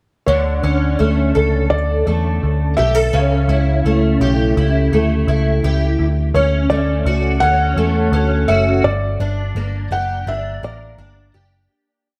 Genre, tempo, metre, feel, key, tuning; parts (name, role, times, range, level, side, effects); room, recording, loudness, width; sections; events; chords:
dream pop; 84 BPM; 4/4; straight; A4 = 440 Hz
felt-muted upright piano; melody; 0.3-11.3 s; C#5 to F#5; -22 LUFS; equal; tape echo
fingerpicked twelve-string acoustic guitar; arpeggios; 0.3-12.2 s; C#3 to A4; -21 LUFS; equal; ensemble chorus, tape echo
vintage muted picked electric bass; bass; 0.3-11.7 s; F#1 to E2; -20 LUFS; equal
moderate recital hall reverb, RT60 1.5 s; -17 LUFS; mono
0.3-11.7 verse
fade-out 8.8-11.7
0.3 A7; 6.0 Dmaj7; 8.8 Gm